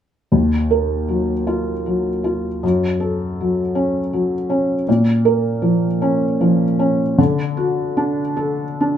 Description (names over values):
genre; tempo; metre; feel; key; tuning
neoclassical minimalist piano; 52 BPM (dotted quarters); 6/8; uneven beats, rubato; Eb minor; A4 = 435 Hz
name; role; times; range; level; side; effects
felt-muted upright piano; solo; 0.3-9.0 s; Eb2 to Bb4; -16 LUFS; equal; none
room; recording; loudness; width
wet studio ambience, RT60 0.5 s; band playing live in one room; -16 LUFS; side -9 dB against mid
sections
0.3-9.0 A section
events
none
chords
0.3 Ebmadd9; 2.6 Gbm; 4.9 Bbm; 7.2 D